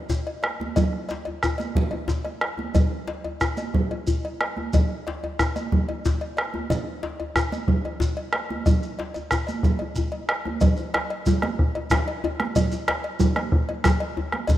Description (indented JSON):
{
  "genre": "west african traditional, West African drum ensemble",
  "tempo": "122 BPM (dotted quarters)",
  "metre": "12/8",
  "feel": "straight",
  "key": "none",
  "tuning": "none",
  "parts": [
    { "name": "djembe", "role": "percussion", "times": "0.1-14.6 s", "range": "none", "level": "-27 LUFS", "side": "left 2 dB", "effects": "none" },
    { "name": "shekere", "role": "percussion", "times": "0.1-14.6 s", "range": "none", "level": "-33 LUFS", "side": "right 1 dB", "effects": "none" },
    { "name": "cowbell", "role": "percussion", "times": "0.3-14.6 s", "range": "none", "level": "-33 LUFS", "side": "left 2 dB", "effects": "none" },
    { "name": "bombo", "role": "percussion", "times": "0.4-14.6 s", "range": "none", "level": "-24 LUFS", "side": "equal", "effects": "none" },
    { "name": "congas", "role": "percussion", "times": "0.4-14.6 s", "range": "none", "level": "-29 LUFS", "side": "right 5 dB", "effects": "none" }
  ],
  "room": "light reverb, small room ambience",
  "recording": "rough home demo mix",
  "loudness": "-22 LUFS",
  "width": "side -13 dB against mid",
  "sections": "0.0-10.6 A section; 10.6-14.6 B section",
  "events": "speeding up 0.0-14.6",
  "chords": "none",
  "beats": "0.26 | 0.76 1.26 1.76 2.25 | 2.75 3.25 3.74 4.24 | 4.73 5.22 5.72 6.21 | 6.70 7.19 7.68 8.18 | 8.66 9.15 9.64 10.13 | 10.62 11.10 11.59 12.07 | 12.56 13.04 13.53 14.01 | 14.49"
}